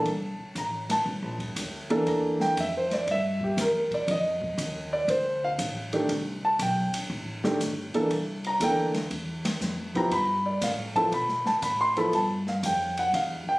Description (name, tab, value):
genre	jazz, small-group swing and bop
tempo	119 BPM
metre	4/4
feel	swing 68% on 8ths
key	C major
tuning	A4 = 440 Hz
part	warm concert grand piano	accompaniment	0.0-13.6 s	Eb3 to C6	-25 LUFS	equal	none
part	upright bass	bass	0.0-13.5 s	G1 to B2	-34 LUFS	equal	none
part	open jazz drum kit	drums	0.1-13.3 s	hi-hat, kick drum, ride cymbal, snare drum	-34 LUFS	equal	none
room	light reverb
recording	recorded on a phone in the room, studio reverb, compression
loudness	-25 LUFS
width	side -20 dB against mid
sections	0.0-13.6 A section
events	none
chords	0.0 C13; 4.1 F13; 8.1 C13; 10.1 G13